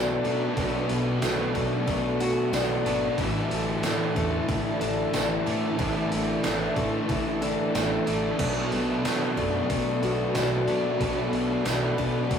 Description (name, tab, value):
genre	rock, shoegaze and dream pop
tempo	92 BPM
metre	4/4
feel	straight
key	B minor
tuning	A4 = 440 Hz
part	soft additive organ-like pad	sustained chords	0.0-12.4 s	E4 to B5	-36 LUFS	right 2 dB	none
part	picked twelve-string acoustic guitar	arpeggios	0.0-12.4 s	E3 to F#4	-30 LUFS	left 3 dB	none
part	distorted electric guitar	riff	0.0-12.4 s	A2 to D4	-34 LUFS	right 2 dB	distortion
part	electric guitar through a small old amp	riff	0.0-12.4 s	A2 to D4	-30 LUFS	right 5 dB	none
part	thick fuzz guitar	riff	0.0-12.4 s	A2 to B3	-30 LUFS	left 4 dB	distortion
part	vintage muted fingered electric bass	bass	0.0-12.4 s	G#1 to B2	-36 LUFS	right 1 dB	none
part	gated 80s digital drum machine	drums	0.2-12.4 s	crash cymbal, hi-hat, kick drum, snare drum	-32 LUFS	right 1 dB	gated reverb, gated reverb snare, overdrive
part	tambourine	percussion	1.2-11.8 s	none	-40 LUFS	right 6 dB	none
room	wet studio reverb, RT60 0.5 s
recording	rough rehearsal-room recording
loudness	-23 LUFS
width	side -7 dB against mid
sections	0.0-12.4 A section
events	none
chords	0.0 Bm7; 3.2 Asus4; 8.4 Bm7